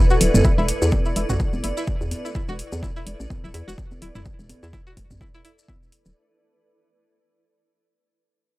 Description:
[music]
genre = minimal techno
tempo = 126 BPM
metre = 4/4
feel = swing 57% on 16ths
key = unclear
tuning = A4 = 441 Hz
[part]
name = string-like resonator pluck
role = riff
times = 0.0-5.8 s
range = E4 to F#4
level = -30 LUFS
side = left 1 dB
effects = chorus, phaser, sidechain pumping, analog delay
[part]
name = granular cloud pad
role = texture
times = 0.0-6.2 s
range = E4 to D5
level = -27 LUFS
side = right 1 dB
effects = built-in reverb, sidechain pumping
[part]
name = maracas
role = percussion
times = 0.1-6.1 s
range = none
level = -34 LUFS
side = left 3 dB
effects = none
[part]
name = hollow knocking FM bass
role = bass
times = 0.2-6.1 s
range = D1 to E2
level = -24 LUFS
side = equal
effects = sidechain pumping
[part]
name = electronic hi-hat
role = drums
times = 0.2-6.0 s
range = none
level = -27 LUFS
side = left 1 dB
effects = studio ambience
[part]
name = electronic toms and congas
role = percussion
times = 0.3-5.8 s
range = none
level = -25 LUFS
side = equal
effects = studio ambience
[part]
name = electronic kick drum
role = drums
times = 0.4-5.8 s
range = none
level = -20 LUFS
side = equal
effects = studio ambience
[sound]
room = little or no reverb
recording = dry, gritty hardware recording, transformer saturation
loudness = -19 LUFS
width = side -19 dB against mid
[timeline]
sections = 0.0-6.2 A section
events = fade-out 0.0-6.2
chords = 0.0 Esus4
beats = | 0.45 0.92 1.40 1.88 | 2.35 2.83 3.30 3.78 | 4.26 4.73 5.21 5.68

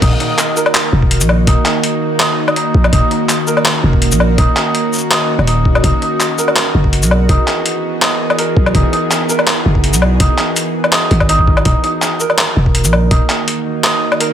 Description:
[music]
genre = half-time drum and bass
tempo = 165 BPM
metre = 4/4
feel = swing 53% on 16ths, half-time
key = Eb phrygian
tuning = A4 = 440 Hz
[part]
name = bowed-like drone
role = sustained chords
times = 0.0-14.3 s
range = Eb3 to G#4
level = -19 LUFS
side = equal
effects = built-in reverb, sidechain pumping
[part]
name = santur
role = arpeggios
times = 0.0-14.3 s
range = Eb4 to Eb5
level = -18 LUFS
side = right 2 dB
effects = dub echo
[part]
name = growling 808-style bass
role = bass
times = 0.0-13.2 s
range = Eb1 to B1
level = -13 LUFS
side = equal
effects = none
[part]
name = boom bap sampler-style drum kit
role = drums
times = 0.0-14.3 s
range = crash cymbal, handclaps, hi-hat, shaker, woodblock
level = -15 LUFS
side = left 1 dB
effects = high-pass filter on snare, high-pass filter on hats, high-pass filter on perc, high-pass filter on toms, high-pass filter on cymbals, high-pass filter on room
[part]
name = electronic kick drum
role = drums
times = 0.0-13.2 s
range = none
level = -14 LUFS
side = equal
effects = none
[sound]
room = light reverb, digital ambience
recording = high-pass filter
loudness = -11 LUFS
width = side -10 dB against mid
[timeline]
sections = 0.0-14.3 A section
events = drop 0.0-14.3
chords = 0.0 Ebm; 5.8 E; 11.7 Ebm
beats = | 0.02 0.38 0.75 1.11 | 1.47 1.84 2.20 2.56 | 2.93 3.29 3.65 4.02 | 4.38 4.75 5.11 5.47 | 5.84 6.20 6.56 6.93 | 7.29 7.66 8.02 8.38 | 8.75 9.11 9.47 9.84 | 10.20 10.56 10.93 11.29 | 11.65 12.02 12.38 12.75 | 13.11 13.47 13.84 14.20

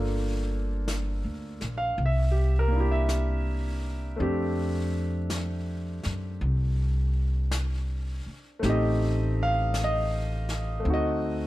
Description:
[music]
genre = jazz ballad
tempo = 54 BPM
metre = 4/4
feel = swing 68% on 8ths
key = F major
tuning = A4 = 440 Hz
[part]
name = warm concert grand piano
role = accompaniment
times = 0.0-11.5 s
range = A3 to F5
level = -30 LUFS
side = equal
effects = none
[part]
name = upright bass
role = bass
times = 0.0-11.5 s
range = G1 to Gb2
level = -27 LUFS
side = equal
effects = none
[part]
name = jazz brush drum kit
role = drums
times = 0.9-11.5 s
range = brushed snare drum, hi-hat, snare drum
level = -39 LUFS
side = left 1 dB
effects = none
[sound]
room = little or no reverb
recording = dark, warm production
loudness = -25 LUFS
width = side -16 dB against mid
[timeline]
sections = 0.0-11.5 A section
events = none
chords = 0.0 Gm7; 2.0 C9; 4.2 F69; 8.6 Am7b5; 10.8 D7b9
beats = 0.86 1.98 3.08 | 4.19 5.30 6.41 7.52 | 8.62 9.73 10.85

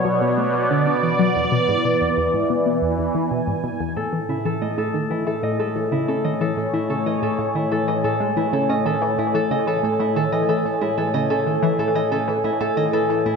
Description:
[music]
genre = ambient, sequencer-driven space music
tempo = 92 BPM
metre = 4/4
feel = straight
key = A lydian from 4.0 s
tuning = A4 = 439 Hz
[part]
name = sweeping resonant pad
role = sustained chords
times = 0.0-13.4 s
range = A2 to G#5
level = -21 LUFS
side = right 1 dB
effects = chorus
[part]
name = tight sequenced synth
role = riff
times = 0.0-13.4 s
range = E2 to D4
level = -24 LUFS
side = left 2 dB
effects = chorus, phaser, ping-pong delay
[part]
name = concert harp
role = arpeggios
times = 4.0-13.4 s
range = E4 to D#5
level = -24 LUFS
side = equal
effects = auto-pan, low-pass filter, ping-pong delay
[sound]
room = wet concert hall reverb, RT60 2.2 s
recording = none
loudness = -18 LUFS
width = side -5 dB against mid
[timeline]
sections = 0.0-4.0 A section; 4.0-13.4 B section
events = filter sweep on synth arpeggio sound 0.0-4.0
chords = 0.0 Bmadd9; 1.4 E7; 4.0 Amaj7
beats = 0.05 0.70 | 1.36 2.01 2.66 3.31 | 3.96 4.62 5.27 5.92 | 6.57 7.22 7.88 8.53 | 9.18 9.83 10.49 11.14 | 11.79 12.44 13.10

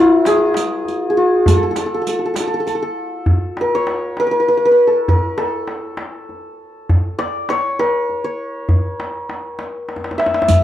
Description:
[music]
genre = Persian modal ensemble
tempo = 66 BPM (dotted quarters)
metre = 6/8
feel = straight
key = unclear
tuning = A4 = 440 Hz
[part]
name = santur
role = melody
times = 0.0-10.6 s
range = F4+45c to E5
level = -16 LUFS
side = left 1 dB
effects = none
[part]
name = riq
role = percussion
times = 0.3-2.7, 10.5-10.6 s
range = none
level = -27 LUFS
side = right 8 dB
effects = none
[part]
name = tombak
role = percussion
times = 0.3-10.6 s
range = none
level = -18 LUFS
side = equal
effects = none
[sound]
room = small room ambience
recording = dry, close 1970s-style studio recording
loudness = -15 LUFS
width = side -12 dB against mid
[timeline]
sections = 0.0-3.3 A section; 3.3-10.6 B section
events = drum fill 9.9-10.5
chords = none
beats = 0.55 | 1.46 2.36 | 3.27 4.17 | 5.07 5.98 | 6.88 7.79 | 8.69 9.60 | 10.50

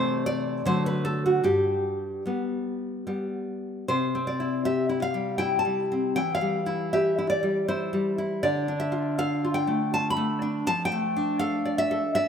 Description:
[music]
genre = romantic piece for solo classical guitar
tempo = 73-83 BPM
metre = 3/4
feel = rubato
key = G major, C major from 3.9 s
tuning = A4 = 439 Hz
[part]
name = nylon-string guitar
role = solo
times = 0.0-12.3 s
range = G2 to B5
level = -24 LUFS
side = left 1 dB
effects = none
[sound]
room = moderate concert hall reverb, RT60 1.9 s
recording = none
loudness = -24 LUFS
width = side -7 dB against mid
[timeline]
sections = 0.0-3.9 A section; 3.9-12.3 B section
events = none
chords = 0.0 Am/C; 0.7 D; 1.4 G; 3.9 C; 6.2 C/E; 8.4 Dm; 10.7 Dm/F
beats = 0.65 | 1.44 2.25 3.06 | 3.87 4.63 5.39 | 6.16 6.92 7.70 | 8.44 9.18 9.93 | 10.66 11.41 12.14

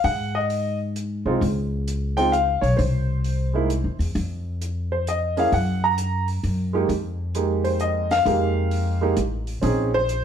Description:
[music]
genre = jazz piano trio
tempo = 131 BPM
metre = 3/4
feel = swing 66% on 8ths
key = F minor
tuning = A4 = 440 Hz
[part]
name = warm concert grand piano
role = melody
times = 0.0-10.2 s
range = Ab3 to Bb5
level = -22 LUFS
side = right 1 dB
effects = none
[part]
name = upright bass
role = bass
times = 0.0-10.2 s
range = A1 to Ab2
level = -24 LUFS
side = left 1 dB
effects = none
[part]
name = compact cocktail drum kit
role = drums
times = 0.0-10.2 s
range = hi-hat, kick drum, snare drum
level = -36 LUFS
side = left 2 dB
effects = none
[sound]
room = moderate studio reverb, RT60 0.9 s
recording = band playing live in one room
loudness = -20 LUFS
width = side -8 dB against mid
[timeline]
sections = 0.0-9.6 A section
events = none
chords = 0.0 Ab5; 1.4 Db; 2.8 N.C.; 5.5 Gb; 6.9 Fm11; 9.6 Bbm11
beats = | 0.04 0.50 0.95 | 1.41 1.87 2.33 | 2.78 3.24 3.70 | 4.15 4.61 5.07 | 5.52 5.98 6.44 | 6.89 7.35 7.81 | 8.26 8.72 9.18 | 9.63 10.09

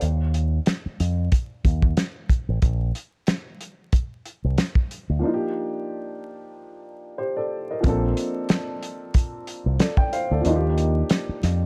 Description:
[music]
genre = hip hop, boom-bap hip-hop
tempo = 92 BPM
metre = 4/4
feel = swing 56% on 16ths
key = Bb major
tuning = A4 = 443 Hz
[part]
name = dark upright piano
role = accompaniment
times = 0.0, 5.2-11.7 s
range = F3 to G5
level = -29 LUFS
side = equal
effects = cassette tape, high-pass filter, low-pass filter
[part]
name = fingered electric bass with an envelope filter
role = bass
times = 0.0-11.7 s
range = A1 to F2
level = -24 LUFS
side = equal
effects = none
[part]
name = warm soul drum kit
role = drums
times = 0.0-11.6 s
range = hi-hat, kick drum, snare drum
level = -23 LUFS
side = equal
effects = none
[sound]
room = small room ambience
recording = dark, warm production, vinyl crackle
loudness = -24 LUFS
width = mono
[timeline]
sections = 0.0-7.8 A section; 7.8-11.7 B section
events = break 0.0-5.2, 5.2-7.8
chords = 0.0 Ebsus2; 2.6 Bbadd9; 5.2 Ebmaj9; 7.8 Bbmaj9; 10.4 Ebmaj9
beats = | 0.02 0.67 1.32 1.97 | 2.62 3.28 3.93 4.58 | 5.23 5.88 6.54 7.19 | 7.84 8.49 9.15 9.80 | 10.45 11.10

